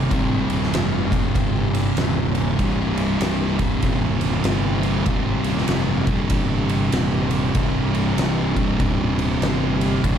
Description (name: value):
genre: stoner and doom metal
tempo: 97 BPM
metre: 4/4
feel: swing 62% on 8ths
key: C minor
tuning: A4 = 440 Hz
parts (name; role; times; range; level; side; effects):
- thick fuzz guitar; riff; 0.0-10.2 s; C2 to C3; -24 LUFS; left 8 dB; distortion
- thick fuzz guitar; riff; 0.0-10.2 s; C2 to C3; -23 LUFS; right 9 dB; distortion
- fuzz fingered electric bass; bass; 0.0-10.2 s; C1 to Ab1; -25 LUFS; equal; overdrive, tube saturation
- oversized low-tuned drum kit; drums; 0.1-10.2 s; kick drum, ride cymbal, snare drum; -24 LUFS; equal; none
room: light reverb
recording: dark, warm production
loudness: -18 LUFS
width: side -8 dB against mid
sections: 0.0-10.2 A section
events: none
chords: 0.0 Cm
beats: | 0.12 0.74 1.36 1.98 | 2.60 3.22 3.84 4.46 | 5.08 5.70 6.32 6.94 | 7.56 8.18 8.80 9.42 | 10.04